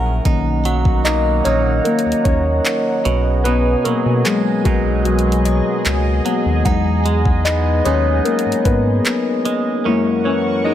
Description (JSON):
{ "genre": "contemporary R&B", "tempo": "75 BPM", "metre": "4/4", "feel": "straight", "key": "B major", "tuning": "A4 = 438 Hz", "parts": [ { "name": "muted felt-like synth keys", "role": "accompaniment", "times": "0.0-10.7 s", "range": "D#3 to A#5", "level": "-18 LUFS", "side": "left 3 dB", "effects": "chorus" }, { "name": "lush unison pad", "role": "sustained chords", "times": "0.0-10.7 s", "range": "A#3 to C#6", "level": "-26 LUFS", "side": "right 1 dB", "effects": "chorus" }, { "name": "direct-recorded clean electric guitar", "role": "arpeggios", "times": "0.0-10.7 s", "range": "F#2 to A#4", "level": "-23 LUFS", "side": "right 8 dB", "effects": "phaser, ping-pong delay" }, { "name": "round analog bass", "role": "bass", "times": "0.0-9.0 s", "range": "A#1 to B2", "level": "-18 LUFS", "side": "equal", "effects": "none" }, { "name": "smooth R&B drum kit", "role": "drums", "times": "0.3-9.6 s", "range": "handclaps, hi-hat, kick drum", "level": "-20 LUFS", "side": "equal", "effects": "none" }, { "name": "synth chime", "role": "texture", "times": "0.7-9.0 s", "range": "D#5 to F#5", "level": "-32 LUFS", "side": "equal", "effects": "ensemble chorus, phaser, tremolo, ping-pong delay" } ], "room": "digital ambience", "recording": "none", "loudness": "-14 LUFS", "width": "side -11 dB against mid", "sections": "0.3-10.7 A section", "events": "synth keys fill 0.0; synth keys solo 0.3-10.7", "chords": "0.3 Bmaj7; 3.1 G#m7/B; 6.7 Emaj7; 9.9 F#7" }